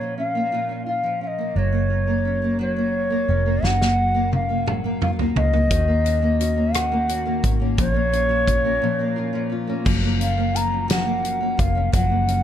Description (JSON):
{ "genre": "six-eight pop ballad", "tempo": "58 BPM (dotted quarters)", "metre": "6/8", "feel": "straight", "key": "F# major", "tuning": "A4 = 440 Hz", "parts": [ { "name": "mellow bansuri", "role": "melody", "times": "0.0-12.4 s", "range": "C#5 to A#5", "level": "-23 LUFS", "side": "left 1 dB", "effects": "tape echo" }, { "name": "nylon-string guitar", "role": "accompaniment", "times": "0.0-12.4 s", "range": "A#2 to F#4", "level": "-25 LUFS", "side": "equal", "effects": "double-tracked left and right" }, { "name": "vintage muted fingered electric bass", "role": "bass", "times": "0.0-12.4 s", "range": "E#1 to D#2", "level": "-23 LUFS", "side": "equal", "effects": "none" }, { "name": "natural country drum kit", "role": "drums", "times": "3.6-12.4 s", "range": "crash cymbal, hi-hat, kick drum, rim click, snare drum, toms", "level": "-24 LUFS", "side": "equal", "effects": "none" }, { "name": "fingerpicked steel-string acoustic guitar", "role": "arpeggios", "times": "5.7-12.4 s", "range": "E#3 to F#4", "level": "-30 LUFS", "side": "left 8 dB", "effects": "none" } ], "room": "studio reverb", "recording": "dark, warm production", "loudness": "-19 LUFS", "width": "side -10 dB against mid", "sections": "0.0-1.6 A section; 1.6-9.9 B section; 9.9-12.4 C section", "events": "drum fill 3.6-5.7; break 8.8-9.9", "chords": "0.0 A#m; 1.6 F#maj7; 5.7 D#m7; 7.8 A#m; 9.9 F#maj7" }